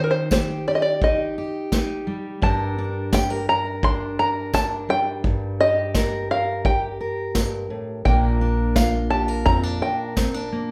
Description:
acoustic folk duo or small band; 85 BPM; 4/4; straight; G minor; A4 = 440 Hz
open-back banjo; melody; 0.0-10.1 s; Bb4 to C6; -24 LUFS; equal
fingerpicked steel-string acoustic guitar; accompaniment; 0.0-10.7 s; G2 to Bb4; -28 LUFS; equal
vintage brush drum kit; drums; 0.3-10.3 s; kick drum, snare drum; -25 LUFS; equal
tambourine; percussion; 0.3-10.3 s; -38 LUFS; equal
upright bass; bass; 8.1-9.8 s; Bb1 to F2; -25 LUFS; equal
wet large studio reverb, RT60 0.8 s; band playing live in one room; -22 LUFS; mono
0.0-10.7 A section
0.0 Eb; 2.4 Gm; 8.1 Bb

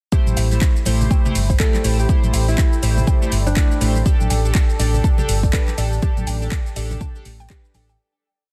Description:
deep house; 122 BPM; 4/4; swing 60% on 16ths; A minor; A4 = 440 Hz
hollow soft pad; sustained chords; 0.1-8.0 s; A4 to B5; -36 LUFS; equal; chorus, sidechain pumping
mallet-like synth pluck; arpeggios; 0.1-8.0 s; G4 to A5; -37 LUFS; equal; chorus, sidechain pumping, delay
chorused polysynth; stabs; 0.1-7.9 s; A3 to D5; -30 LUFS; equal; vintage 12-bit sampler grit, sidechain pumping, delay
deep house drum kit; drums; 0.1-8.0 s; handclaps, hi-hat, shaker; -30 LUFS; equal; overdrive
electronic kick drum; drums; 0.1-7.6 s; -19 LUFS; equal; overdrive
ethereal airy pad; texture; 2.3-8.0 s; A4 to G5; -40 LUFS; equal
fingered electric bass; bass; 0.3-7.9 s; G1 to A1; -21 LUFS; equal; sidechain pumping
congas; percussion; 0.3-7.9 s; -32 LUFS; equal
breathy alto saxophone; melody; 1.6-4.0 s; D4 to A4; -30 LUFS; equal; delay
digital ambience; dense, heavily limited modern master; -18 LUFS; mono
0.1-8.0 drop
drop 0.1-8.0; fade-out 5.4-8.0
0.1 Am7; 4.1 Dsus4

